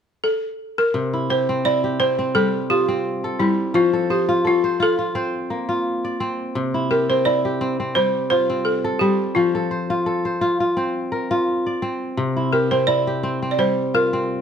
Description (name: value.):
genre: west african traditional.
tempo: 86 BPM.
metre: 4/4.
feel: swing 54% on 16ths.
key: C mixolydian.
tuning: A4 = 440 Hz.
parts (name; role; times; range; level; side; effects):
balafon; melody; 0.2-14.4 s; E4 to D5; -20 LUFS; equal; none.
kora; arpeggios; 0.9-14.4 s; C3 to D5; -21 LUFS; left 1 dB; none.
room: light reverb.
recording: close, detailed microphones.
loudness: -18 LUFS.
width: side -8 dB against mid.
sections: 0.9-14.4 A section.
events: none.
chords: 0.0 N.C.; 0.9 C; 3.7 F; 6.6 C; 9.4 F; 12.2 C.